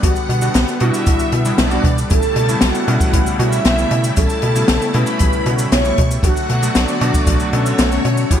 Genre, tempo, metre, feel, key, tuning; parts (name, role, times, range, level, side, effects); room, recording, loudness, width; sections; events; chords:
synthwave; 116 BPM; 4/4; straight; A4 = 442 Hz
expressive portamento lead; melody; 0.0-8.4 s; C#4 to C#5; -22 LUFS; equal; wide subtle chorus, digital delay
string machine, violins; second line; 0.0-8.4 s; C#5 to C#6; -25 LUFS; equal; ensemble chorus, digital delay
brassy analog pad; sustained chords; 0.0-8.4 s; C#3 to F#5; -24 LUFS; left 1 dB; chorus, sidechain pumping
warm electric grand piano; stabs; 0.0-8.4 s; A2 to A4; -23 LUFS; right 1 dB; analog chorus, digital delay
tight sequencer bass; bass; 0.0-8.4 s; A1 to B2; -18 LUFS; equal
kick drum; drums; 0.0-8.4 s; -17 LUFS; equal
open jazz drum kit; drums; 0.0-8.4 s; cabasa, hi-hat, snare drum; -20 LUFS; left 1 dB; gated reverb
moderate plate reverb, RT60 1.3 s, small room ambience; bright 1980s-style digital production; -13 LUFS; side -9 dB against mid
0.0-8.4 A section
0.0 Gmaj7/B; 2.1 A7/B; 6.2 D/B